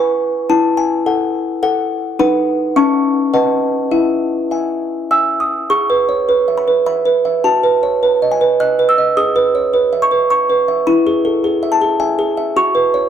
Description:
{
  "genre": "classical, lullaby for music box",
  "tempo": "105 BPM",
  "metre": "3/4",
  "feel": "rubato",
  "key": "E major",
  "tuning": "A4 = 440 Hz",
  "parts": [
    { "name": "music box", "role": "solo", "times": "0.0-13.1 s", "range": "C#4 to F#6", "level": "-12 LUFS", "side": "equal", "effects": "none" }
  ],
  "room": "light reverb",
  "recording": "dark, warm production",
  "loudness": "-13 LUFS",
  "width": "side -9 dB against mid",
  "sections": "0.0-5.7 A section; 5.7-13.1 B section",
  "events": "none",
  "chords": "0.5 F#m7/E; 2.2 B/D#; 2.8 A/C#; 3.3 B7; 3.9 E; 5.7 E/G#; 7.4 B7/F#; 9.2 E/G#; 10.9 E; 12.6 B5/F#"
}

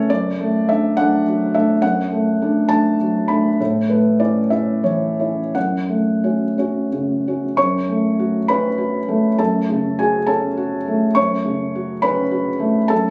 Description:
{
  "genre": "neoclassical minimalist piano",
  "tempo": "57-70 BPM (dotted quarters)",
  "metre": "6/8",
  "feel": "rubato",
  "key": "F# minor",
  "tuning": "A4 = 440 Hz",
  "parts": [
    { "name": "felt-muted upright piano", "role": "solo", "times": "0.0-13.1 s", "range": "F#2 to C#6", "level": "-18 LUFS", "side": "equal", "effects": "none" }
  ],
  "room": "moderate studio reverb, RT60 0.8 s",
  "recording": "recorded on a phone in the room, club reverb, compression",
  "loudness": "-19 LUFS",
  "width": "mono",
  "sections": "0.0-7.6 A section; 7.6-13.1 B section",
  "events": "none",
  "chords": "0.1 D/F#; 3.6 A; 5.6 F#m"
}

